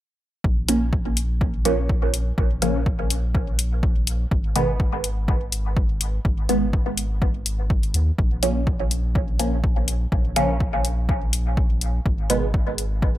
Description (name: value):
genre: dub techno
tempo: 124 BPM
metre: 4/4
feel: swing 54% on 16ths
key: Bb phrygian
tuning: A4 = 440 Hz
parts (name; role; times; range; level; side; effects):
- soft dub sub bass; bass; 0.4-13.2 s; Ab1 to Eb2; -24 LUFS; equal; sidechain pumping
- electronic kick drum; drums; 0.4-13.1 s; none; -22 LUFS; equal; overdrive
- filtered dub chord stab; stabs; 0.7-12.5 s; Cb3 to Db4; -25 LUFS; right 1 dB; phaser, cassette tape, sidechain pumping, dub echo
- electronic hi-hat; drums; 0.7-12.9 s; none; -25 LUFS; left 4 dB; overdrive
room: light reverb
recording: none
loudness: -20 LUFS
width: side -14 dB against mid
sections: 0.4-13.2 A section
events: none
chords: 0.4 Bbm; 4.3 Abm; 8.2 Bbm; 12.1 Abm